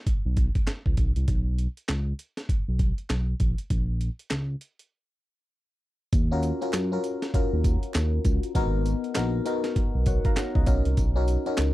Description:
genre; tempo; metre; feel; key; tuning
R&B, new jack swing; 99 BPM; 4/4; swing 61% on 16ths; Eb minor; A4 = 440 Hz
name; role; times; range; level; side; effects
smooth synth bass; bass; 0.1-11.7 s; Ab1 to Gb2; -26 LUFS; equal; none
breakbeat sampler-style drum kit; drums; 0.1-11.7 s; handclaps, hi-hat, kick drum, snare drum, tambourine; -25 LUFS; equal; none
FM electric piano; accompaniment; 6.3-11.7 s; Cb4 to Bb5; -28 LUFS; left 2 dB; chorus, phaser
group handclap; percussion; 6.7-11.7 s; none; -41 LUFS; right 7 dB; none
room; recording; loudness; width
little or no reverb; dry, close 1970s-style studio recording; -23 LUFS; side -16 dB against mid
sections
0.0-6.1 A section; 6.1-11.7 B section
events
break 4.9-6.1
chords
0.0 N.C.; 3.4 Bbm; 6.1 Ebm9; 8.6 Abm9; 10.7 Bmaj9

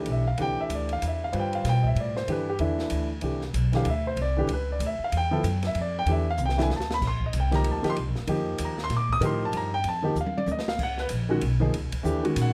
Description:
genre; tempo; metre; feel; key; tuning
modal jazz; 190 BPM; 3/4; swing 61% on 8ths; C major, F mixolydian from 7.0 s; A4 = 440 Hz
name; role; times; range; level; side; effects
warm grand piano; accompaniment; 0.0-12.5 s; Eb3 to Eb6; -30 LUFS; equal; none
upright bass; bass; 0.0-12.5 s; F1 to B2; -30 LUFS; equal; none
open jazz drum kit; drums; 0.1-12.5 s; crash cymbal, hi-hat, kick drum, ride cymbal, snare drum, toms; -38 LUFS; equal; none
room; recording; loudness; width
light reverb; none; -27 LUFS; mono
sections
0.0-7.0 A section; 7.0-12.5 A section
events
drum fill 6.4-7.0, 10.2-10.8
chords
0.0 Cmaj9; 7.0 F9sus4; 10.8 Db9sus4

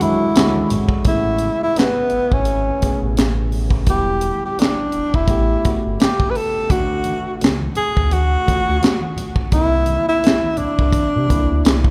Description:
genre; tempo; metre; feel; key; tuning
R&B, neo-soul; 85 BPM; 4/4; swing 59% on 16ths; A major; A4 = 440 Hz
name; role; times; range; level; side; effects
breathy tenor saxophone; melody; 0.0-11.9 s; B3 to B4; -22 LUFS; equal; none
tine electric piano; accompaniment; 0.0-11.9 s; B2 to G#4; -28 LUFS; equal; none
pipe organ, stopped flute; sustained chords; 0.0-1.0 s; G#4 to C#6; -39 LUFS; equal; none
smooth gliding synth bass; bass; 0.0-11.9 s; E1 to C3; -25 LUFS; equal; none
tight funk drum kit; drums; 0.0-11.9 s; handclaps, hi-hat, kick drum, snare drum; -20 LUFS; equal; none
congas; percussion; 0.0-0.9, 6.7-11.9 s; none; -34 LUFS; equal; none
room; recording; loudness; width
moderate cathedral reverb, RT60 7.3 s; band playing live in one room; -18 LUFS; mono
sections
0.0-1.1 A section; 1.1-11.9 B section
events
none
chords
0.0 E13; 1.1 Amaj9; 3.9 Em7; 5.3 A9; 6.7 Dmaj7; 9.5 C9

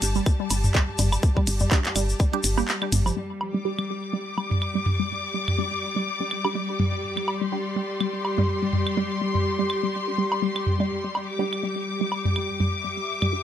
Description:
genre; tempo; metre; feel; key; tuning
minimal techno; 124 BPM; 4/4; swing 56% on 16ths; unclear; A4 = 440 Hz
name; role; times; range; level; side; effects
woody FM bass; bass; 0.0-3.1 s; G1; -25 LUFS; equal; sidechain pumping
minimal click drum kit; drums; 0.0-3.0 s; handclaps, hi-hat, ride cymbal; -28 LUFS; right 1 dB; low-pass filter on snare, low-pass filter on hats, low-pass filter on cymbals
egg shaker; percussion; 0.0-3.1 s; none; -31 LUFS; left 5 dB; none
rich studio string section; texture; 0.0-13.4 s; G3 to D6; -28 LUFS; left 2 dB; sidechain pumping
hollow square pluck; riff; 0.2-13.3 s; F3 to Bb3; -29 LUFS; right 1 dB; chorus, vintage 12-bit sampler grit, sidechain pumping, digital delay
electronic kick drum; drums; 0.3-2.3 s; none; -21 LUFS; equal; none
electronic claves, woodblock and toms; percussion; 0.3-13.3 s; none; -26 LUFS; right 1 dB; digital delay
filtered dub chord stab; stabs; 1.7-13.4 s; G3 to G4; -31 LUFS; right 5 dB; phaser, vintage 12-bit sampler grit, digital delay
room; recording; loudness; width
moderate studio reverb, RT60 0.5 s; none; -22 LUFS; side -10 dB against mid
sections
0.0-3.2 A section; 3.2-13.4 B section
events
drop 0.0-3.2; kick drops out 2.7-3.2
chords
0.0 G5

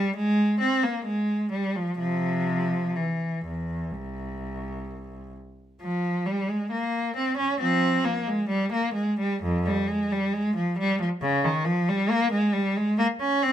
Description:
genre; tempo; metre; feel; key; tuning
classical, baroque-style suite movement for unaccompanied cello; 61-70 BPM; 4/4; rubato; F minor; A4 = 442 Hz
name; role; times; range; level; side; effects
rich cello; solo; 0.0-13.5 s; C2 to Db4; -24 LUFS; equal; none
room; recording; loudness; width
light reverb; none; -23 LUFS; side -10 dB against mid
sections
0.0-5.8 A section; 5.8-13.5 A section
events
none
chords
none

